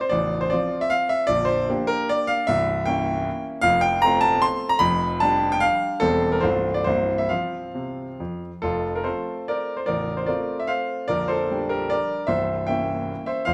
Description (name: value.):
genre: classical, romantic triple-time dance for piano with dotted rhythms.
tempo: 127-166 BPM.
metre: 3/4.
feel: rubato.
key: F major.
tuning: A4 = 442 Hz.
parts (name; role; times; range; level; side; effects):
clear grand piano; solo; 0.0-13.5 s; A0 to C6; -23 LUFS; equal; none.
room: moderate recital hall reverb, RT60 1.4 s.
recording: none.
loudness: -23 LUFS.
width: mono.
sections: 0.0-8.6 A section; 8.6-13.5 B section.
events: none.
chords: 0.1 F/A; 1.3 Gm/Bb; 2.5 C7b9; 3.6 F; 4.8 G7/F; 6.0 C/E; 6.4 F/C; 6.9 C7; 7.3 F5; 8.6 F; 9.9 F/A; 11.1 Gm/Bb; 12.3 C7b9.